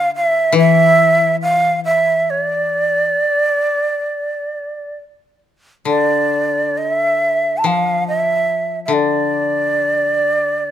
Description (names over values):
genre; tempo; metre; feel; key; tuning
japanese traditional, Japanese chamber music; 62-72 BPM; 4/4; rubato; D hirajoshi; A4 = 440 Hz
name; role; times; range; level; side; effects
breathy bright shakuhachi; melody; 0.0-10.7 s; D5 to A5; -15 LUFS; right 2 dB; none
koto; accompaniment; 0.0-10.7 s; D3 to F3; -20 LUFS; left 6 dB; none
room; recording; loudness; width
light reverb; close, detailed microphones; -14 LUFS; side -10 dB against mid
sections
0.0-5.9 A section; 5.9-10.7 B section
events
none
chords
none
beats
0.55 1.39 | 2.24 3.11 4.00 4.93 | 5.87 6.77 7.65 8.47 | 9.32 10.17